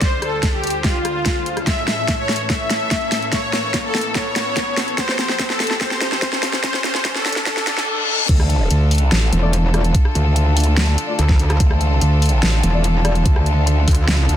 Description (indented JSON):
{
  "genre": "heavy wobble dubstep",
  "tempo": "145 BPM",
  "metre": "4/4",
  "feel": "half-time",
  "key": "D minor",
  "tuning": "A4 = 440 Hz",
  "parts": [
    { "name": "soft supersaw", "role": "melody", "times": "0.0-8.2 s", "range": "F4 to E5", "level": "-22 LUFS", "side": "left 1 dB", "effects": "ping-pong delay" },
    { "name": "rich chamber string section", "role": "sustained chords", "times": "0.0-14.4 s", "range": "D2 to C5", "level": "-26 LUFS", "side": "left 1 dB", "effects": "sidechain pumping, low-pass filter" },
    { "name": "dubstep drum kit", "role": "drums", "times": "0.0-14.4 s", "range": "crash cymbal, hi-hat, rim click, snare drum", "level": "-21 LUFS", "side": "equal", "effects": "overdrive" },
    { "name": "electronic kick drum", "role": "drums", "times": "0.0-14.0 s", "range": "none", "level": "-18 LUFS", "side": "equal", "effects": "overdrive" },
    { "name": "riser and reverse cymbal", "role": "sound effects", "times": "0.0-8.3 s", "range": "none", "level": "-27 LUFS", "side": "left 2 dB", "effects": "none" },
    { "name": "growl bass", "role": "bass", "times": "8.3-13.9 s", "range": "A1 to D2", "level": "-15 LUFS", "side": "equal", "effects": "chorus, overdrive" },
    { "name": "metallic wobble bass", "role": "bass", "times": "9.3-14.4 s", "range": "E1 to D2", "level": "-16 LUFS", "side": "equal", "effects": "distortion, chorus, overdrive" },
    { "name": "dark brass ensemble", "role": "stabs", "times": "9.4-13.1 s", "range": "A3 to D5", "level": "-27 LUFS", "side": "left 5 dB", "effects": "ping-pong delay" }
  ],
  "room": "light reverb, digital ambience",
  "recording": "dense, heavily limited modern master, high-pass filter",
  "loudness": "-15 LUFS",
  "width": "side -10 dB against mid",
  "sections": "0.0-8.3 A section; 8.3-14.4 B section",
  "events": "build-up 0.0-8.3; drum fill 0.0-7.9; riser 0.0-7.9; filter sweep 0.0-8.3; reverse cymbal 7.5-8.3; drop 8.3-14.4",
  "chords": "0.0 Dm7; 1.7 A; 5.0 Fadd9; 8.3 Dm"
}